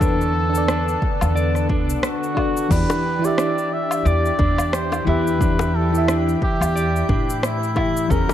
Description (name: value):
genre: sunset chillout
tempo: 89 BPM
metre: 4/4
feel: swing 57% on 16ths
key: E minor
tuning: A4 = 440 Hz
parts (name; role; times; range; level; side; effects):
- trumpet with cup mute; melody; 0.0-8.3 s; E4 to E5; -25 LUFS; equal; digital delay, shimmer reverb
- mellow FM electric piano; accompaniment; 0.0-8.3 s; E3 to E5; -24 LUFS; moving between left 7 dB and right 3 dB; chorus, tremolo, auto-pan, shimmer reverb
- lush unison pad; sustained chords; 0.0-8.3 s; D3 to A4; -28 LUFS; equal; chorus, shimmer reverb
- clean electric guitar; arpeggios; 0.0-8.3 s; C#4 to D5; -29 LUFS; equal; ping-pong delay, shimmer reverb
- upright bass; bass; 0.0-8.2 s; B1 to A2; -22 LUFS; equal; none
- deep house drum kit; drums; 0.0-8.3 s; cabasa, crash cymbal, rim click, woodblock; -27 LUFS; left 1 dB; overdrive, studio reverb
- electronic kick drum; drums; 0.0-8.3 s; none; -22 LUFS; equal; overdrive, studio reverb
- drifting glass-harmonics texture; texture; 3.5-8.3 s; E4 to G6; -34 LUFS; left 5 dB; chorus, built-in reverb, shimmer reverb
- bongos; percussion; 2.9-8.3 s; none; -28 LUFS; left 6 dB; none
room: light reverb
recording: dark, warm production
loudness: -17 LUFS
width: side -11 dB against mid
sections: 0.0-8.3 A section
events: none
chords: 0.0 Bm7/E; 2.7 Em7